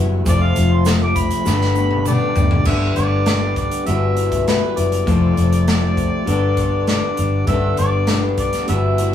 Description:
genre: folk rock and heartland rock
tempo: 100 BPM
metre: 4/4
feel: straight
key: G major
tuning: A4 = 438 Hz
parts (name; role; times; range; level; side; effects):
- picked old ladder-braced acoustic guitar; accompaniment; 0.0-9.1 s; G2 to B4; -27 LUFS; left 6 dB; none
- tonewheel organ; sustained chords; 0.0-2.6 s; E3 to A4; -33 LUFS; right 1 dB; none
- electric guitar through a small old amp; riff; 0.0-9.1 s; F3 to A4; -21 LUFS; left 2 dB; none
- fingered electric bass; bass; 0.0-9.1 s; F1 to G1; -18 LUFS; left 1 dB; none
- mellow harmonica; melody; 0.3-9.1 s; B4 to D6; -24 LUFS; right 2 dB; none
- natural country drum kit; drums; 0.3-9.1 s; crash cymbal, hi-hat, kick drum, snare drum, toms; -22 LUFS; left 1 dB; none
- egg shaker; percussion; 0.3-2.5 s; none; -36 LUFS; right 6 dB; none
room: moderate studio reverb, RT60 0.7 s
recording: band playing live in one room, small room ambience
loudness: -15 LUFS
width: side -10 dB against mid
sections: 0.0-2.7 A section; 2.7-9.1 B section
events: harmonica solo 0.0-2.7; drum fill 1.5-2.7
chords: 0.3 F; 1.5 Gadd9; 3.9 Emadd9/G; 5.1 F; 6.3 Gadd9

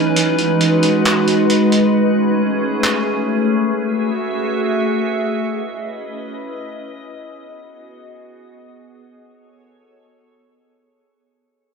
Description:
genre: hip hop, atmospheric cloud-rap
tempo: 135 BPM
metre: 4/4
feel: half-time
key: unclear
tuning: A4 = 441 Hz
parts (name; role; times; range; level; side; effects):
- glassy FM pad; sustained chords; 0.0-10.8 s; E3 to E5; -16 LUFS; equal; ensemble chorus, built-in reverb
- trip hop sampler-style drum kit; drums; 0.2-2.9 s; handclaps, hi-hat; -20 LUFS; right 1 dB; none
room: wet lush hall reverb, RT60 2.0 s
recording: none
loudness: -15 LUFS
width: side -5 dB against mid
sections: 0.0-10.8 A section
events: break 0.0-3.7; fade-out 0.0-10.8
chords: 0.2 G#m7; 1.9 Amaj9; 3.7 F#m9; 5.5 C#m9; 7.3 G#m7; 9.1 Amaj9

